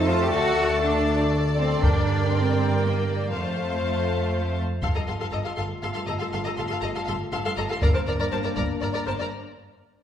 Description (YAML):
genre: cinematic, epic orchestral film score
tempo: 120 BPM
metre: 3/4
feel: straight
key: G minor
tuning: A4 = 441 Hz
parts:
  - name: rich symphonic violin section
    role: melody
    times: 0.0-9.3 s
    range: G5 to C6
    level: -35 LUFS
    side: left 3 dB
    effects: none
  - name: warm symphonic violin section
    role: second line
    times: 0.0-9.2 s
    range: C5 to F5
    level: -33 LUFS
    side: left 2 dB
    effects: none
  - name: rich chamber viola section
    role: accompaniment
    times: 0.0-9.2 s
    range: A4 to C5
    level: -32 LUFS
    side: equal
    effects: none
  - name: bright trombone section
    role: sustained chords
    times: 0.0-4.5 s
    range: D3 to A3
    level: -28 LUFS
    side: left 2 dB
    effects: none
  - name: mellow French horn section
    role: sustained chords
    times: 0.0-9.3 s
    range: A3 to D5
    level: -32 LUFS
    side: left 3 dB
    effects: none
  - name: rich symphonic cello section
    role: bass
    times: 0.0-9.2 s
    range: G2 to G4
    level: -29 LUFS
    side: right 2 dB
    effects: none
  - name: rich symphonic double bass section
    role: bass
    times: 0.0-9.1 s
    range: G1 to G2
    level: -28 LUFS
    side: right 2 dB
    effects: none
  - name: taiko ensemble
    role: drums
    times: 1.8-8.8 s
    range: none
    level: -25 LUFS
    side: left 1 dB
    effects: none
room: wet recital hall reverb, RT60 1.3 s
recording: recorded in a church or concert hall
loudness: -22 LUFS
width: side -9 dB against mid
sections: 0.0-4.8 A section; 4.8-10.0 B section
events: break 9.3-10.0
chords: 0.3 D; 1.8 Gm; 3.3 F; 4.8 F/G; 7.8 Gm; 9.3 N.C.